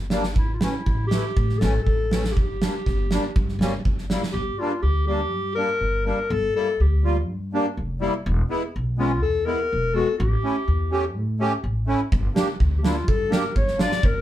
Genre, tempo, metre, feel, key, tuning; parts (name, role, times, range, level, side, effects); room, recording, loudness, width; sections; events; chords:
klezmer; 123 BPM; 4/4; straight; G dorian sharp4; A4 = 438 Hz
upright bass; bass; 0.0-14.2 s; E1 to A2; -24 LUFS; equal
accordion; accompaniment; 0.1-13.9 s; E3 to G4; -26 LUFS; equal; light tremolo tuning
gated 80s drum kit; drums; 0.1-4.3, 12.1-14.1 s; kick drum, snare drum; -23 LUFS; right 1 dB
warm clarinet; melody; 0.4-14.2 s; E4 to D5; -26 LUFS; left 3 dB
wet small room reverb, RT60 0.5 s; heard from further back in the room; -20 LUFS; side -13 dB against mid
0.0-4.3 A section; 4.3-14.2 B section
speeding up 0.0-14.2
0.4 A; 2.4 Gm; 8.3 E; 10.2 A; 12.1 Gm